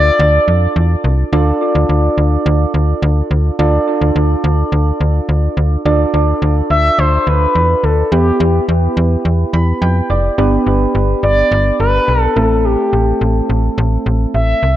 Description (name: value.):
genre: synth-pop.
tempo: 106 BPM.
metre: 4/4.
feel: straight.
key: D dorian.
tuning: A4 = 444 Hz.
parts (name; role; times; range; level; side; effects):
expressive synth lead; melody; 0.0-0.4, 6.7-14.8 s; G4 to E5; -15 LUFS; left 1 dB; chorus, tape echo.
soft electric-piano-like synth keys; accompaniment; 0.0-14.6 s; A3 to B5; -17 LUFS; right 2 dB; chorus, tape echo.
slap-like FM bass; bass; 0.0-14.8 s; F1 to F2; -13 LUFS; equal; none.
room: moderate spring reverb, RT60 2.7 s.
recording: echo-heavy mix.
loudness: -11 LUFS.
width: side -13 dB against mid.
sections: 0.0-1.3 A section; 1.3-5.9 B section; 5.9-14.8 C section.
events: synth keys fill 9.2-10.4.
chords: 0.0 Dm; 5.9 Dmadd9; 8.1 Em; 10.4 G; 12.4 Am.